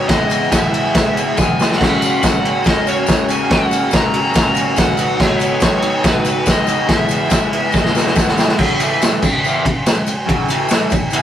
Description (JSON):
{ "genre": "garage rock duo or trio", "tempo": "141 BPM", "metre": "4/4", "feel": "straight", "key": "F# mixolydian", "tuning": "A4 = 440 Hz", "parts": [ { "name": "overdriven slide guitar", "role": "melody", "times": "0.0-8.1 s", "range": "B4 to A#5", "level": "-20 LUFS", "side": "equal", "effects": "none" }, { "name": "overdriven combo organ", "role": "sustained chords", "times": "0.0-8.6 s", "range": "C#4 to B4", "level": "-27 LUFS", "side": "left 2 dB", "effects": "none" }, { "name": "raw garage guitar", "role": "riff", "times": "0.0-11.2 s", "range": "F#2 to E4", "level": "-20 LUFS", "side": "equal", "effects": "overdrive" }, { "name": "raw garage drum kit", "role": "drums", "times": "0.1-11.2 s", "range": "crash cymbal, kick drum, ride cymbal, snare drum", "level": "-14 LUFS", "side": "equal", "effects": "none" }, { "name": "tambourine", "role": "percussion", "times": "0.1-11.2 s", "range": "none", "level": "-31 LUFS", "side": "left 6 dB", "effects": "none" } ], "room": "light reverb", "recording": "rough rehearsal-room recording, warm saturation", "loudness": "-13 LUFS", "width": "side -10 dB against mid", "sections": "0.0-8.6 A section; 8.6-11.2 B section", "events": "drum fill 1.4-1.8, 7.7-8.6", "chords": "0.1 E; 1.8 F#; 5.0 B; 6.9 E; 8.6 F#5; 8.8 A5; 9.2 F#5; 10.5 A5" }